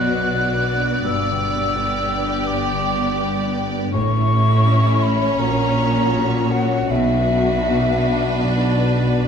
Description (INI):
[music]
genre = cinematic, emotional film score for orchestra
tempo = 76-85 BPM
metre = 4/4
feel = rubato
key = B minor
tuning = A4 = 440 Hz
[part]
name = rich studio violin section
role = melody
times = 0.0-9.3 s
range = B4 to D5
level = -27 LUFS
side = right 1 dB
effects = none
[part]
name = mellow hollow silver concert flute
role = second line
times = 0.0-9.3 s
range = D5 to F#6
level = -23 LUFS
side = left 2 dB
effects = none
[part]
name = warm symphonic violin section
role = second line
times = 0.0-9.3 s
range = E4 to G4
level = -28 LUFS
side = left 2 dB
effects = none
[part]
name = rich studio viola section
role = accompaniment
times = 0.0-9.3 s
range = B3 to D4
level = -27 LUFS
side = right 2 dB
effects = none
[part]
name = warm concert grand piano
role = accompaniment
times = 0.0-9.3 s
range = A1 to F#4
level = -26 LUFS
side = equal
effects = none
[part]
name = concert harp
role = arpeggios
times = 0.0-9.3 s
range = G2 to G4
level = -27 LUFS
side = left 6 dB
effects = none
[part]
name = rich symphonic cello section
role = bass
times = 0.0-9.3 s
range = G2 to B2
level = -24 LUFS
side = equal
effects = none
[part]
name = rich symphonic double bass section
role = bass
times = 0.0-9.3 s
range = G1 to B1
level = -23 LUFS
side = right 2 dB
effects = none
[sound]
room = wet stone room reverb, RT60 0.9 s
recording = none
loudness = -16 LUFS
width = side -7 dB against mid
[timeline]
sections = 0.0-9.3 A section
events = none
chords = 0.0 Bm; 1.1 G; 3.9 A; 5.4 F#/A#; 6.9 Bm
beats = 0.32 | 1.06 1.77 2.49 3.22 | 3.95 4.67 5.40 6.15 | 6.90 7.66 8.43 9.22